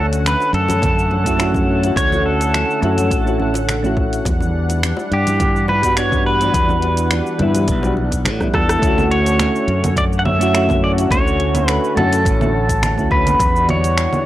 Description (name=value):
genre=sunset chillout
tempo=105 BPM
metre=4/4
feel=swing 53% on 16ths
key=D major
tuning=A4 = 440 Hz
part: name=pedal steel guitar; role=melody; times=0.0-14.3 s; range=G4 to F#5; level=-19 LUFS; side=equal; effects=tape echo
part: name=lush unison pad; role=sustained chords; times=0.0-14.3 s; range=D3 to F#5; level=-24 LUFS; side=equal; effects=chorus
part: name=modern bright fingered electric bass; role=bass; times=0.0-14.1 s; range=A1 to A2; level=-20 LUFS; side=equal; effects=none
part: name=deep house drum kit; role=drums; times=0.1-14.2 s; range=cabasa, congas, finger snaps, hi-hat, rim click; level=-23 LUFS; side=right 1 dB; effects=overdrive
part: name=congas and bongos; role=percussion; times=0.2-8.7 s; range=none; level=-28 LUFS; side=left 3 dB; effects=none
part: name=electronic kick drum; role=drums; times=0.8-13.5 s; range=none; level=-21 LUFS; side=equal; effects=overdrive
part: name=soft electric-piano-like synth keys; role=accompaniment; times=1.2-13.4 s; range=G3 to A4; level=-21 LUFS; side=equal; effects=chorus, auto-pan, tape echo
room=light reverb, digital ambience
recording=dry, gritty hardware recording, cassette tape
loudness=-14 LUFS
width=side -14 dB against mid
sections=0.0-8.8 A section; 8.8-14.3 B section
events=drum fill 8.4-8.8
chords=0.0 Dmaj7; 4.3 Em9; 8.8 Dmaj7; 13.4 Em9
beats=0.25 0.83 1.40 | 1.97 2.54 3.11 3.68 | 4.25 4.83 5.40 5.97 | 6.54 7.11 7.68 8.25 | 8.83 9.40 9.97 10.54 | 11.11 11.68 12.25 12.83 | 13.40 13.97